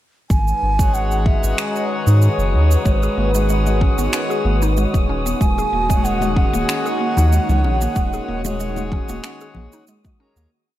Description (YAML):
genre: organic downtempo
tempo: 94 BPM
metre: 4/4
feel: swing 54% on 16ths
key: G# minor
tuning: A4 = 441 Hz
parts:
  - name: breathy mellow low ney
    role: melody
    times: 0.3-9.8 s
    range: B4 to G#5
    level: -25 LUFS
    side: right 2 dB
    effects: ping-pong delay
  - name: warm analog pad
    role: sustained chords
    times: 0.3-10.5 s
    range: D#3 to A#5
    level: -27 LUFS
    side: equal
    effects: chorus, sidechain pumping
  - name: round analog bass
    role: bass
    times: 0.3-10.5 s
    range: D#1 to G#2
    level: -18 LUFS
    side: equal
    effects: sidechain pumping
  - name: electronic kick drum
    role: drums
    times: 0.3-10.2 s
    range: none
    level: -18 LUFS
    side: equal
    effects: studio reverb
  - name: electronic shaker and finger snaps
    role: drums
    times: 0.3-10.5 s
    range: none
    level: -27 LUFS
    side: right 2 dB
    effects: studio reverb
  - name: wind-like tuned noise texture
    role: texture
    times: 1.1-10.5 s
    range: F#4 to D#6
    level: -30 LUFS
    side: right 2 dB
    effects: built-in reverb
  - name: pedal harmonium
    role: accompaniment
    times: 0.8-10.5 s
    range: G#3 to A#4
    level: -26 LUFS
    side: left 3 dB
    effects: sidechain pumping, digital delay
  - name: mallet-like synth pluck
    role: arpeggios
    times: 2.9-10.5 s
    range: G#3 to G#4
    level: -26 LUFS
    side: equal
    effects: chorus, cassette tape, digital delay
  - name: bongos and congas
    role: percussion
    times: 5.6-9.7 s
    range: none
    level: -30 LUFS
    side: left 4 dB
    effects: none
room: little or no reverb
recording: none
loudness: -16 LUFS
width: side -13 dB against mid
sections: 0.3-10.5 groove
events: fade-out 7.1-10.5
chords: 0.3 G#m7; 5.4 D#m7